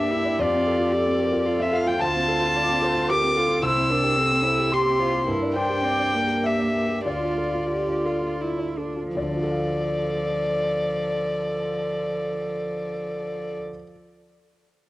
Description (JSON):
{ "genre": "neoclassical piano and strings", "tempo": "79-112 BPM", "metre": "3/4", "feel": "rubato", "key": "D minor", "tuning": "A4 = 440 Hz", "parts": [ { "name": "warm violin", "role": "melody", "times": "0.0-13.6 s", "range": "D5 to E6", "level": "-25 LUFS", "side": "left 2 dB", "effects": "cassette tape" }, { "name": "warm cello", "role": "second line", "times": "0.0-13.5 s", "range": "F3 to G4", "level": "-29 LUFS", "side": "right 3 dB", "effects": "cassette tape" }, { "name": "dark viola", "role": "accompaniment", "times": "0.0-13.6 s", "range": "F4 to D5", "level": "-30 LUFS", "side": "right 2 dB", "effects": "cassette tape" }, { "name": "warm grand piano", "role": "accompaniment", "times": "0.0-13.9 s", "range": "C2 to E6", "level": "-27 LUFS", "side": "left 1 dB", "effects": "cassette tape" } ], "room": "light reverb, small room ambience", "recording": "home recording on cassette", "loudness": "-21 LUFS", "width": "side -17 dB against mid", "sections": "0.0-9.2 A section; 9.2-13.7 B section", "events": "slowing down 4.5-9.2", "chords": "0.4 F; 2.0 Dm7; 3.6 C; 5.3 Gm; 7.1 Dm" }